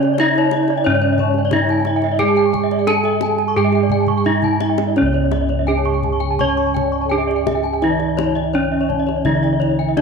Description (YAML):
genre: Balinese gamelan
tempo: 84-93 BPM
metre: 4/4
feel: straight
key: C# pelog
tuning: A4 = 440 Hz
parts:
  - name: gamelan-type bronze metallophone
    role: melody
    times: 0.0-10.0 s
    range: C#4 to C#5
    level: -19 LUFS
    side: right 1 dB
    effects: none
  - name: celesta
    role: second line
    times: 0.0-10.0 s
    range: A4-40c to C#6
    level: -30 LUFS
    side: left 10 dB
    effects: none
  - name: gamelan-type bronze metallophone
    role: accompaniment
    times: 0.0-10.0 s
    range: C#3 to C#4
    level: -24 LUFS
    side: right 10 dB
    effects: none
  - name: gamelan-type bronze metallophone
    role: arpeggios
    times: 0.0-10.0 s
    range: C#5 to C#6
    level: -24 LUFS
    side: right 9 dB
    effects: none
  - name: gamelan-type bossed gongs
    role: bass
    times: 0.0-10.0 s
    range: C#2 to G#4-45c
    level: -22 LUFS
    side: left 1 dB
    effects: none
  - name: kendang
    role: percussion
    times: 0.0-10.0 s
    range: none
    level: -28 LUFS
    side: left 10 dB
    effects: none
  - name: gamelan-type bronze metallophone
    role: arpeggios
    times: 0.1-10.0 s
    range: C#5 to C#6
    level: -23 LUFS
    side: left 11 dB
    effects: none
room: moderate echo chamber reverb, RT60 1.9 s, studio reverb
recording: 1960s-style stereo with parts hard left and right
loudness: -15 LUFS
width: side -5 dB against mid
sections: 0.0-5.0 A section; 5.0-10.0 B section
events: drum fill 4.1-5.0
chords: none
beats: 0.21 0.86 1.52 | 2.19 2.87 3.56 4.26 | 4.96 5.68 6.39 7.11 | 7.82 8.54 9.25 9.96